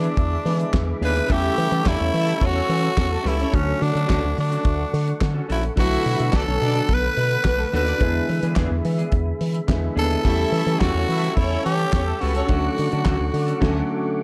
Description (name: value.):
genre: disco.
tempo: 107 BPM.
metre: 4/4.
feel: straight.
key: unclear.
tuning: A4 = 442 Hz.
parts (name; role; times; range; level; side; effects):
growling tenor saxophone; melody; 0.0-14.2 s; C#4 to B4; -27 LUFS; equal; none.
semi-hollow electric guitar; accompaniment; 0.0-13.8 s; B3 to A4; -35 LUFS; equal; none.
warm grand piano; accompaniment; 0.0-14.2 s; C#3 to C#5; -31 LUFS; equal; none.
percussive tonewheel organ; sustained chords; 0.0-14.2 s; G#4 to E6; -34 LUFS; equal; chorus vibrato, slow rotary speaker.
fingered electric bass with an envelope filter; bass; 0.0-13.8 s; A#1 to E3; -26 LUFS; equal; none.
damped 70s drum kit; drums; 0.0-13.8 s; crash cymbal, handclaps, hi-hat, kick drum, snare drum; -26 LUFS; equal; none.
clear studio string section; second line; 1.3-12.5 s; A3 to E5; -32 LUFS; equal; none.
room: little or no reverb.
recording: dark, warm production.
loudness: -21 LUFS.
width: mono.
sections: 0.0-14.2 A section.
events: band accent 13.6-14.2.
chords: 0.0 E7; 1.3 A7/E; 3.5 Dmaj7; 5.8 Bm7; 8.0 E7; 10.3 A7/E; 12.5 Dmaj7.